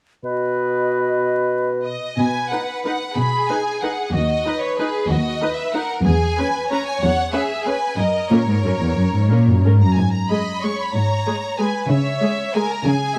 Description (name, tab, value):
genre	classical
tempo	186 BPM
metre	3/4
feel	uneven beats, rubato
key	B major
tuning	A4 = 440 Hz
part	mellow hollow silver concert flute	second line	0.2-2.0 s	D#5	-30 LUFS	equal	none
part	mellow bassoon	accompaniment	0.2-2.0 s	B2	-26 LUFS	equal	none
part	clear oboe	second line	0.3-2.0 s	B4	-28 LUFS	equal	none
part	mellow clarinet	second line	0.3-2.0 s	F#4	-26 LUFS	equal	none
part	clear symphonic violin section	melody	1.9-13.2 s	B4 to C#6	-26 LUFS	equal	none
part	rich symphonic violin section	second line	2.2-13.2 s	F#4 to E5	-28 LUFS	equal	none
part	rich symphonic cello section	bass	2.2-13.1 s	D#2 to C#3	-20 LUFS	equal	none
part	rich studio viola section	accompaniment	2.5-13.2 s	G#3 to B4	-27 LUFS	equal	none
room	light reverb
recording	close, detailed microphones, vinyl crackle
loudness	-20 LUFS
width	mono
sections	0.2-2.2 A section; 2.2-13.2 B section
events	none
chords	0.2 B; 4.1 B/D#; 6.1 C#m7/E; 8.0 F#; 10.0 G#m; 11.9 C#m